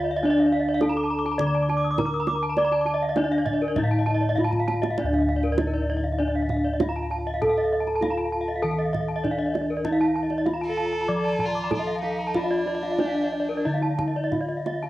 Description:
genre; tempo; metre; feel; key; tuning
Balinese gamelan; 88-104 BPM; 4/4; straight; D pelog; A4 = 440 Hz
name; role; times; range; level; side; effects
gamelan-type bronze metallophone; melody; 0.0-14.9 s; D4 to D5; -28 LUFS; left 1 dB; cassette tape
gamelan-type bronze metallophone; arpeggios; 0.0-14.9 s; Bb4 to Eb6+35c; -31 LUFS; left 3 dB; cassette tape, analog delay
gamelan-type bossed gongs; bass; 0.0-14.9 s; D2 to D5; -26 LUFS; equal; none
gamelan-type bronze metallophone; arpeggios; 0.2-14.7 s; Bb4 to D6; -30 LUFS; right 3 dB; cassette tape
kendang; percussion; 0.4-14.9 s; none; -30 LUFS; right 4 dB; none
bright violin; second line; 10.7-13.8 s; D4 to A4; -30 LUFS; right 1 dB; cassette tape
room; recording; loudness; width
moderate small room reverb, RT60 0.5 s; home recording on cassette; -22 LUFS; side -16 dB against mid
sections
0.0-5.0 A section; 5.0-14.9 B section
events
drum fill 4.4-5.0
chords
none

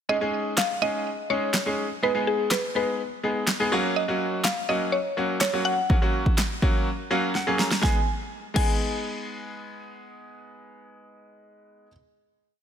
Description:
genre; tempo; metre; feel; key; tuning
dance-pop; 124 BPM; 4/4; straight; G# dorian; A4 = 442 Hz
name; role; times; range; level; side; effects
mallet-like synth pluck; melody; 0.1-11.9 s; G#4 to G#5; -27 LUFS; equal; chorus, digital delay
bright grand piano; accompaniment; 0.1-11.9 s; F#3 to A#5; -27 LUFS; equal; sidechain pumping
deep house drum kit; drums; 0.6-8.7 s; crash cymbal, handclaps, kick drum, snare drum; -25 LUFS; equal; none
room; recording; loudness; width
light reverb, digital ambience; none; -22 LUFS; side -8 dB against mid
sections
0.1-7.8 verse; 7.8-11.7 final chord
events
grand piano fill 6.9-7.8; drum fill 7.4-7.8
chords
0.1 C#sus2; 2.0 G#m; 3.7 F#; 7.8 G#m

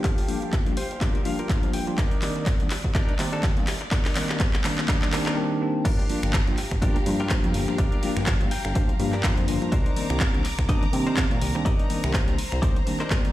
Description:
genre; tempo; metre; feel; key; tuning
filtered disco house; 124 BPM; 4/4; swing 56% on 16ths; G minor; A4 = 440 Hz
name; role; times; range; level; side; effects
rich studio violin section; sustained chords; 0.0-13.3 s; G4 to D6; -36 LUFS; left 1 dB; sidechain pumping, low-pass filter
direct-recorded clean electric guitar; riff; 0.0-13.2 s; D4 to G5; -34 LUFS; left 3 dB; tremolo, sidechain pumping, low-pass filter
fat analog bass; bass; 0.0-12.6 s; G1 to C3; -29 LUFS; equal; sidechain pumping, high-pass filter, low-pass filter
electronic kick drum; drums; 0.0-13.2 s; none; -24 LUFS; equal; small room ambience
house drum kit; drums; 0.0-13.3 s; crash cymbal, finger snaps, handclaps, hi-hat; -31 LUFS; equal; small room ambience, sidechain pumping on hats, sidechain pumping on cymbals
bell-like tine electric piano; accompaniment; 0.3-13.3 s; Eb3 to D5; -29 LUFS; equal; slow stereo tremolo, phaser, sidechain pumping, low-pass filter
room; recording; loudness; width
light reverb; played on a big sound system in a bare room, stone room reverb; -21 LUFS; side -15 dB against mid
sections
0.0-5.9 A section; 5.9-13.3 B section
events
build-up 0.0-5.9; drum fill 0.0-5.4; clean electric guitar fill 0.5-2.0, 8.3-9.7; drop 5.9-13.3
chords
0.0 Gm7; 2.0 Cm9; 5.9 Gm7; 9.7 Cm9

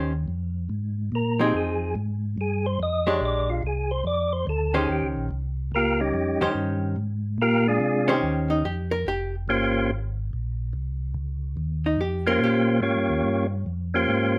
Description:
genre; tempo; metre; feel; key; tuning
soul jazz organ trio; 144 BPM; 4/4; swing 66% on 8ths; Eb mixolydian; A4 = 440 Hz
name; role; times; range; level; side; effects
archtop guitar, miked and amplified; accompaniment; 0.0-9.3, 11.9-12.7 s; Eb3 to C5; -28 LUFS; equal; none
mellow tonewheel organ; bass; 0.0-14.4 s; F1 to C3; -30 LUFS; equal; chorus vibrato, slow rotary speaker
percussive tonewheel organ; melody; 1.2-14.4 s; G3 to Eb5; -26 LUFS; equal; overdrive, chorus vibrato, fast rotary speaker
room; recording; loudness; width
moderate club reverb, RT60 0.7 s; none; -25 LUFS; mono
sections
0.0-8.2 A section; 8.2-14.4 A section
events
tonewheel organ solo 0.0-8.2; hollow-body jazz guitar solo 8.2-14.4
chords
0.0 Ebsus2; 1.5 Fm7; 3.2 Bb13; 4.9 Eb13; 7.4 Bb13; 8.2 Eb13; 9.9 Abadd9; 11.6 Eb13

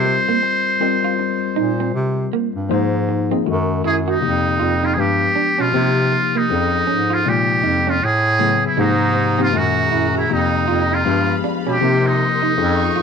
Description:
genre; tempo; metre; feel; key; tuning
R&B, neo-soul; 79 BPM; 4/4; swing 61% on 16ths; unclear; A4 = 440 Hz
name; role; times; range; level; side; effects
trumpet with metal mute; melody; 0.0-13.0 s; Eb4 to C5; -19 LUFS; right 1 dB; none
tine electric piano; accompaniment; 0.0-13.0 s; A2 to Eb5; -21 LUFS; left 12 dB; overdrive, fast stereo tremolo
breathy bass clarinet; bass; 0.0-13.0 s; F2 to C3; -21 LUFS; right 2 dB; none
electric guitar through a small old amp; second line; 0.1-13.0 s; Ab3 to Gb4; -23 LUFS; right 16 dB; lush chorus
dark studio string section; sustained chords; 8.8-13.0 s; Ab3 to C#6; -28 LUFS; right 1 dB; none
room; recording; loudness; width
light reverb, small room ambience; 1960s-style stereo with parts hard left and right; -15 LUFS; side -6 dB against mid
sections
0.0-2.7 A section; 2.7-13.0 B section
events
muted trumpet solo 2.7-13.0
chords
0.0 Cm7; 2.7 Abadd9; 3.5 Gbadd9; 4.2 F7sus4; 5.0 G7b9; 5.7 Cm7; 6.5 F7alt; 7.3 Bb7sus2; 8.0 Amaj9; 8.8 Abmaj9; 9.5 Gb9; 10.3 F7sus4; 11.1 G7b9; 11.8 Cm7

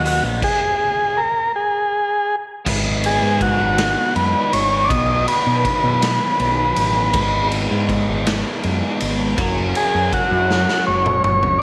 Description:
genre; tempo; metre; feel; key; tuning
psychedelic rock; 54 BPM (dotted quarters); 6/8; straight; G# minor; A4 = 435 Hz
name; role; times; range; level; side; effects
overdriven combo organ; melody; 0.0-11.6 s; F#4 to D#5; -20 LUFS; equal; slapback echo
biting overdriven guitar; riff; 0.0-11.6 s; G#2 to B4; -26 LUFS; equal; phaser
growling fingered electric bass; bass; 0.0-11.6 s; F#1 to B2; -24 LUFS; equal; overdrive
raw garage drum kit; drums; 0.1-11.6 s; crash cymbal, hi-hat, kick drum, ride cymbal, snare drum, toms; -25 LUFS; equal; none
room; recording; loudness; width
moderate spring reverb, RT60 2.7 s; none; -18 LUFS; mono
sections
0.0-2.7 A section; 2.7-11.6 B section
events
transistor combo organ solo 2.7-11.6; drum fill 10.5-11.6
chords
0.4 N.C.; 2.7 G#m; 4.9 B; 7.2 G#m; 9.4 F#

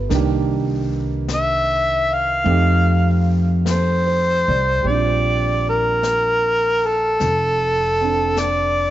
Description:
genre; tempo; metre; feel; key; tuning
jazz ballad; 51 BPM; 4/4; swing 69% on 8ths; Bb major; A4 = 438 Hz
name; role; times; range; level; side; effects
warm concert grand piano; accompaniment; 0.0-8.9 s; Eb3 to D5; -25 LUFS; right 9 dB; none
upright bass; bass; 0.0-8.9 s; F1 to F2; -20 LUFS; left 1 dB; none
jazz brush drum kit; drums; 0.1-8.9 s; brushed snare drum, hi-hat, snare drum; -34 LUFS; left 8 dB; none
overdriven harmonica; melody; 1.3-8.9 s; A4 to F5; -18 LUFS; equal; none
room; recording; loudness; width
light reverb, studio ambience; 1960s-style stereo with parts hard left and right, nothing above 7.8 kHz; -16 LUFS; side -13 dB against mid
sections
0.0-4.8 A section; 4.8-8.9 B section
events
harmonica solo 0.0-4.8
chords
0.1 Cm7; 2.5 F7; 4.8 Bb69

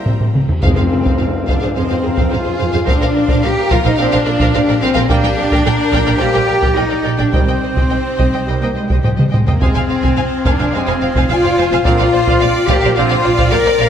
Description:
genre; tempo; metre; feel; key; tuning
cinematic, epic orchestral film score; 107 BPM; 4/4; straight; F dorian; A4 = 439 Hz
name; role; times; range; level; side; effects
warm symphonic violin section; melody; 0.0-13.9 s; C5 to Ab5; -24 LUFS; left 2 dB; none
rich symphonic violin section; second line; 0.0-13.9 s; F4 to Bb5; -25 LUFS; left 2 dB; none
clear trombone section; sustained chords; 0.0-13.2 s; C3 to C4; -26 LUFS; right 3 dB; none
mellow French horn section; sustained chords; 0.0-13.9 s; F3 to Bb4; -18 LUFS; left 4 dB; none
warm woodwind section; sustained chords; 0.0-13.9 s; G3 to G5; -26 LUFS; equal; none
warm symphonic viola section; accompaniment; 0.1-13.9 s; C4 to F5; -23 LUFS; right 1 dB; none
rich studio cello section; bass; 0.1-13.9 s; C3 to Bb4; -20 LUFS; right 1 dB; none
warm symphonic double bass section; bass; 0.1-13.8 s; F1 to F2; -20 LUFS; right 4 dB; none
solo taiko drums; drums; 0.1-13.9 s; none; -17 LUFS; equal; none
tam-tam; percussion; 0.6-2.8 s; none; -28 LUFS; left 2 dB; none
timpani; percussion; 0.6-1.4 s; F2; -24 LUFS; left 2 dB; none
room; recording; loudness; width
moderate scoring stage reverb, RT60 1.5 s; none; -12 LUFS; side -9 dB against mid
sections
0.6-13.9 A section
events
drum fill 0.1-0.6, 9.0-9.6; band accent 0.6-1.2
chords
0.0 C7; 0.6 Fm; 2.9 Bbadd9; 5.1 Gm/Bb; 7.3 Cm; 9.6 Fm; 11.9 Bbadd9

